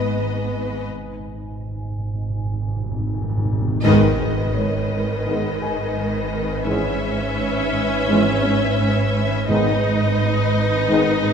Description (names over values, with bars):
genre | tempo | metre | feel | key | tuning
cinematic, suspense film score | 84 BPM | 4/4 | uneven beats | G# minor | A4 = 443 Hz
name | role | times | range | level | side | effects
warm studio violin section | melody | 0.0-11.3 s | D#5 to E5 | -27 LUFS | left 2 dB | none
rich studio violin section | second line | 0.0-11.3 s | B4 | -27 LUFS | left 1 dB | none
rich studio viola section | accompaniment | 0.0-11.3 s | D#3 to D#4 | -25 LUFS | equal | none
dark studio double bass section | bass | 0.0-11.3 s | G#1 | -27 LUFS | right 1 dB | none
warm studio cello section | bass | 0.0-11.3 s | G#2 | -28 LUFS | right 2 dB | none
organ-like drone | drone | 0.0-11.3 s | G#1 | -28 LUFS | right 1 dB | ensemble chorus, built-in reverb
warm grand piano | texture | 0.0-11.3 s | C#4 to G#5 | -32 LUFS | left 3 dB | none
rich studio cello section | riff | 0.2-11.3 s | G#2 to G#3 | -25 LUFS | right 4 dB | none
timpani | percussion | 0.9-4.9, 9.5-10.5 s | G#2 | -25 LUFS | equal | none
mellow French horn section | sustained chords | 3.8-11.1 s | B3 to D#4 | -26 LUFS | left 5 dB | none
warm trombone section | sustained chords | 3.8-11.1 s | D#3 to G#3 | -27 LUFS | right 2 dB | none
impact | sound effects | 3.8-6.7 s | none | -30 LUFS | left 1 dB | none
room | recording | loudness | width
wet scoring stage reverb, RT60 2.2 s | minimal, uncompressed stereo recording | -18 LUFS | side -7 dB against mid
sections
0.0-3.8 A section; 3.8-11.3 B section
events
timpani fill 0.9-3.8; band accent 3.8-4.5; impact 3.8-6.7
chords
0.0 G#m; 0.9 N.C.; 3.8 G#m; 6.7 C#m7/G#; 9.5 G#m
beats
0.15 | 0.89 1.63 2.38 3.11 | 3.84 4.55 5.26 5.97 | 6.68 7.38 8.09 8.79 | 9.49 10.19 10.89